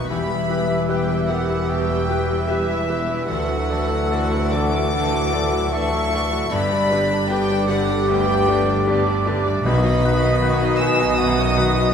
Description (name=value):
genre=cinematic, emotional film score for orchestra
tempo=76 BPM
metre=4/4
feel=rubato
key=unclear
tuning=A4 = 440 Hz
part: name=warm symphonic violin section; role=melody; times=0.0-11.9 s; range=E5 to E6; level=-27 LUFS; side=left 4 dB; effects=none
part: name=dark clarinet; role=second line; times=0.0-11.9 s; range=F#4 to G4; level=-28 LUFS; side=left 4 dB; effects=none
part: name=mellow hollow concert flute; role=second line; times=0.0-11.9 s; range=G4 to G#5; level=-27 LUFS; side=equal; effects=none
part: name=warm oboe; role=second line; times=0.0-11.9 s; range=D5 to E5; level=-28 LUFS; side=right 3 dB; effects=none
part: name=warm symphonic violin section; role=second line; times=0.0-11.9 s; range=D4 to D#5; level=-31 LUFS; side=left 2 dB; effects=none
part: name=bright concert grand piano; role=accompaniment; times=0.0-11.9 s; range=B1 to D5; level=-26 LUFS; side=left 2 dB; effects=none
part: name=dark studio viola section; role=accompaniment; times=0.0-11.9 s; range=D3 to F#4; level=-29 LUFS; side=right 1 dB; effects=none
part: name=dark French horn section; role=sustained chords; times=0.0-11.9 s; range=D3 to A4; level=-28 LUFS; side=left 2 dB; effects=none
part: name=concert harp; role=arpeggios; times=0.0-11.9 s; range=G2 to D6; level=-29 LUFS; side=left 6 dB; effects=none
part: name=dark symphonic double bass section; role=bass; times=0.0-11.9 s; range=E1 to D2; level=-26 LUFS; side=right 3 dB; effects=none
part: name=warm symphonic cello section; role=bass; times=0.0-11.9 s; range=D2 to B2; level=-27 LUFS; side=right 3 dB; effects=none
part: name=timpani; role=percussion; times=9.6-10.8 s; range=B2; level=-24 LUFS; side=left 1 dB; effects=none
room=wet scoring stage reverb, RT60 1.7 s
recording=minimal, uncompressed stereo recording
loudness=-17 LUFS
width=side -7 dB against mid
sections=0.0-11.9 A section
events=none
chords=0.1 Em; 3.3 Dadd9; 6.5 G; 9.6 B